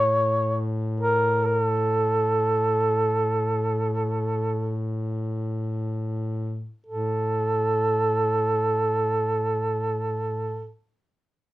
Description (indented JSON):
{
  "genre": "caucasian folk, Caucasian lament",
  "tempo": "free time",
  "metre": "none",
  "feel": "none",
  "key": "A major",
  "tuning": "A4 = 440 Hz",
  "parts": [
    { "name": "dark duduk", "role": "melody", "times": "0.0-10.7 s", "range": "A4 to C#5", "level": "-23 LUFS", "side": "right 1 dB", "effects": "none" },
    { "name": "mellow duduk", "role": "drone", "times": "0.0-10.7 s", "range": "A2", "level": "-27 LUFS", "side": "left 1 dB", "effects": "none" }
  ],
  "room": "light reverb",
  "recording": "close, detailed microphones",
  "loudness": "-22 LUFS",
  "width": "side -17 dB against mid",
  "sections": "0.0-6.9 A section; 6.9-11.5 B section",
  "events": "slowing down 0.0-6.9",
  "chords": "none"
}